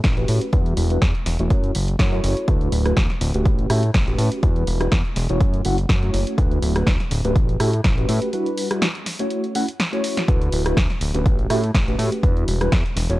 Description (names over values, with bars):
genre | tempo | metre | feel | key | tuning
filtered disco house | 123 BPM | 4/4 | swing 54% on 16ths | E dorian | A4 = 440 Hz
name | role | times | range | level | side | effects
fat analog bass | bass | 0.0-13.2 s | D1 to A2 | -21 LUFS | equal | sidechain pumping, low-pass filter
electronic kick drum | drums | 0.0-12.8 s | none | -20 LUFS | equal | none
punchy analog drum machine | drums | 0.0-13.2 s | hi-hat, rim click, snare drum | -26 LUFS | equal | none
mellow reed electric piano | accompaniment | 0.2-13.2 s | G3 to F#5 | -24 LUFS | equal | fast tremolo, phaser, sidechain pumping, low-pass filter
room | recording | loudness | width
little or no reverb | dry, gritty hardware recording | -18 LUFS | side -17 dB against mid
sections
0.0-13.2 A section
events
filter sweep 0.0-13.2; break 8.3-10.3; drum fill 9.8-10.3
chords
0.0 A13; 0.5 Em9; 1.5 F#m7; 2.5 D69; 3.5 A13; 4.4 Em9; 5.4 F#m7; 6.4 D69; 7.4 A13; 8.3 Em9; 9.3 F#m7; 10.3 D69; 11.3 A13; 12.2 Em9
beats
0.04 | 0.53 1.02 1.50 1.99 | 2.48 2.97 3.46 3.94 | 4.43 4.92 5.41 5.89 | 6.38 6.87 7.36 7.84 | 8.33 8.82 9.31 9.80 | 10.28 10.77 11.26 11.75 | 12.23 12.72